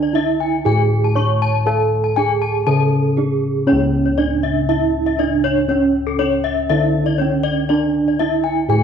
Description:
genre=Balinese gamelan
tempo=119 BPM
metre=4/4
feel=straight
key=C# pelog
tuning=A4 = 440 Hz
part: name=gamelan-type bronze metallophone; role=melody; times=0.0-8.8 s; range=C#4 to C#5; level=-20 LUFS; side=right 9 dB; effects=none
part: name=gamelan-type bronze metallophone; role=arpeggios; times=0.0-8.8 s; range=A4-20c to C#6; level=-21 LUFS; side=left 9 dB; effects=none
part: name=gamelan-type bossed gongs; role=bass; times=0.0-8.8 s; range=C#2 to A4-20c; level=-18 LUFS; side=left 1 dB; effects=none
room=moderate echo chamber reverb, RT60 1.5 s, small room ambience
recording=1960s-style stereo with parts hard left and right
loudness=-15 LUFS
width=side -7 dB against mid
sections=0.0-8.8 A section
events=none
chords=none

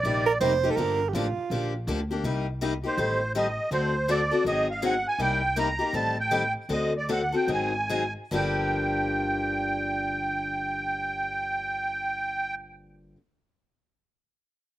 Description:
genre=acoustic string swing (jazz manouche)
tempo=139-163 BPM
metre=4/4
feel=swing 62% on 8ths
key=G minor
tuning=A4 = 439 Hz
part: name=musette accordion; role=melody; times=0.0-0.4, 2.9-12.5 s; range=C5 to Bb5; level=-27 LUFS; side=right 2 dB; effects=slapback echo
part: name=picked steel-string acoustic guitar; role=accompaniment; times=0.0-13.2 s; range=G2 to A4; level=-29 LUFS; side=left 3 dB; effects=none
part: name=upright bass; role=bass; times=0.0-13.1 s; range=F1 to D2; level=-33 LUFS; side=equal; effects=none
part: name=breathy soprano saxophone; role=second line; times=0.3-1.9 s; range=F4 to C5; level=-25 LUFS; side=right 6 dB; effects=slapback echo
room=little or no reverb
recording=recorded outdoors, with no room sound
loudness=-24 LUFS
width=side -14 dB against mid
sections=0.0-2.2 A section; 2.2-8.3 B section; 8.3-11.8 C section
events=slowing down 5.2-8.3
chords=0.0 Cm9; 0.8 Gm9; 2.2 Cm7; 3.0 Am7b5; 3.7 D7; 4.4 Ab7; 5.2 Cm7; 5.9 Am7b5; 6.7 D7; 7.5 Ab7; 8.3 Gm7

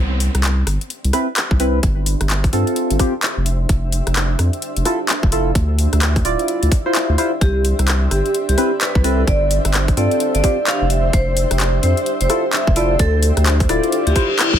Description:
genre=UK garage, two-step garage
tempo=129 BPM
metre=4/4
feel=swing 62% on 16ths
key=unclear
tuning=A4 = 442 Hz
part: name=saturated sub bass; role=bass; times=0.0-14.6 s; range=D1 to G2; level=-17 LUFS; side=equal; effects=none
part: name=granular cloud pad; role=texture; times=1.4-14.6 s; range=D4 to E5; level=-26 LUFS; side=right 1 dB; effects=built-in reverb, sidechain pumping
part: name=garage drum kit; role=drums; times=0.2-14.6 s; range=handclaps, hi-hat, rim click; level=-21 LUFS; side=left 1 dB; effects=studio ambience
part: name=percussive organ stab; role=stabs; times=1.1-14.3 s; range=C4 to D5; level=-20 LUFS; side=left 1 dB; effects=wide subtle chorus, digital delay
part: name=electronic kick drum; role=drums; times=1.5-14.6 s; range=none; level=-17 LUFS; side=equal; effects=studio ambience
part: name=vibraphone with medium hard mallets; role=melody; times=7.4-14.6 s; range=E4 to F5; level=-21 LUFS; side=equal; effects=digital delay
part: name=ethereal airy pad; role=sustained chords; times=8.8-14.6 s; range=C5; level=-29 LUFS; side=right 3 dB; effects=ensemble chorus, built-in reverb, tremolo, sidechain pumping
part: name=reverse cymbal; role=sound effects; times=14.1-14.6 s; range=none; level=-24 LUFS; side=left 3 dB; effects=none
room=light reverb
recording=none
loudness=-15 LUFS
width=side -10 dB against mid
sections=0.0-14.6 A section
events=reverse cymbal 14.1-14.6; drum fill 14.4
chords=0.0 Cmaj7; 1.8 Fmaj7; 5.6 Dm9; 7.4 Cmaj7; 9.3 Fmaj7; 13.0 Dm9

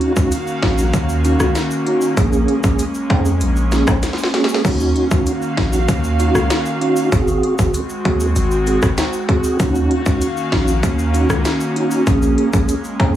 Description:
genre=dancehall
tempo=97 BPM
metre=4/4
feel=straight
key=Eb dorian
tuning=A4 = 437 Hz
part: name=mellow tonewheel organ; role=accompaniment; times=0.0-13.2 s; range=Bb3 to Ab4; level=-19 LUFS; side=right 2 dB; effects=chorus vibrato, fast rotary speaker
part: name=airy breathy pad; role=sustained chords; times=0.0-13.2 s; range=Eb3 to F5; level=-22 LUFS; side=left 1 dB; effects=chorus, sidechain pumping
part: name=island pop drum kit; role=drums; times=0.0-13.1 s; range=crash cymbal, hi-hat, kick drum, rim click, snare drum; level=-18 LUFS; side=equal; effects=overdrive
part: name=hard-hitting 808-style bass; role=bass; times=0.2-13.2 s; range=Ab1 to F2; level=-19 LUFS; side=equal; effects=none
part: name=tube shaker and timbales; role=percussion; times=0.2-13.1 s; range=none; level=-29 LUFS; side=left 1 dB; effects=none
room=light reverb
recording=studio ambience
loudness=-14 LUFS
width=side -12 dB against mid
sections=0.0-13.2 A section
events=drum fill 4.0-4.6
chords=0.0 Ebm7; 2.2 Bbm7; 4.6 Ebm7; 7.1 Ab7; 9.6 Ebm7; 12.1 Bbm7

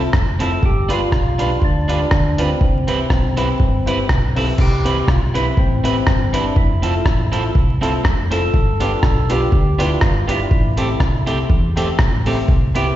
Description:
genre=ska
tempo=122 BPM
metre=4/4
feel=swing 55% on 8ths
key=C major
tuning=A4 = 440 Hz
part: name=bright upright piano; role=stabs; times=0.0-12.9 s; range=C4 to B4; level=-25 LUFS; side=left 4 dB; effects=slapback echo
part: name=hollow-body short-scale fingered electric bass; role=bass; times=0.0-12.9 s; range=F1 to E2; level=-19 LUFS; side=equal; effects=none
part: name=dusty soul sampler-style drum kit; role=drums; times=0.1-12.9 s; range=crash cymbal, hi-hat, kick drum, rim click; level=-17 LUFS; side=equal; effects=vintage 12-bit sampler grit
part: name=percussive tonewheel organ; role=melody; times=0.4-13.0 s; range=C4 to A4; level=-24 LUFS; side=equal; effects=overdrive, stopped rotary speaker, slapback echo
part: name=electric guitar at the edge of break-up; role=accompaniment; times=0.4-12.9 s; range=A3 to B4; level=-24 LUFS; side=right 6 dB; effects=slapback echo
room=light reverb, digital ambience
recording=live gig heard through the venue's PA, recital hall reverb, vinyl crackle, nothing above 7.7 kHz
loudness=-14 LUFS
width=side -13 dB against mid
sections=0.0-4.6 A section; 4.6-13.0 A section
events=none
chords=0.0 Fmaj7; 0.6 G7; 2.6 Cmaj7; 6.6 Fmaj7; 8.5 G7; 10.5 Am7

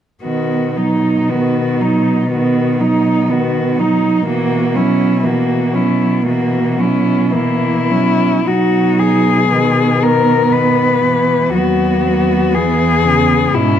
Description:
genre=classical, lyrical piece for cello ensemble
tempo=59 BPM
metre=4/4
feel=uneven beats, rubato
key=B major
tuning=A4 = 442 Hz
part: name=dark cello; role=melody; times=0.2-13.8 s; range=D#4 to B4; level=-17 LUFS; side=left 7 dB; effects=none
part: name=warm cello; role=second line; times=0.2-13.8 s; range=A#3 to D#4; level=-18 LUFS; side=right 8 dB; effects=none
part: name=dark cello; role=accompaniment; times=0.2-13.8 s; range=B2 to F#3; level=-19 LUFS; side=left 1 dB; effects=none
part: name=warm cello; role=bass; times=0.2-13.8 s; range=D#2 to B2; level=-17 LUFS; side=right 1 dB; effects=none
room=moderate recital hall reverb, RT60 1.5 s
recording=dark, warm production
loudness=-12 LUFS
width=side -9 dB against mid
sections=0.2-8.5 A section; 8.5-13.8 B section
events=none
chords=0.2 B; 4.3 F#7/B; 8.5 B; 12.5 E

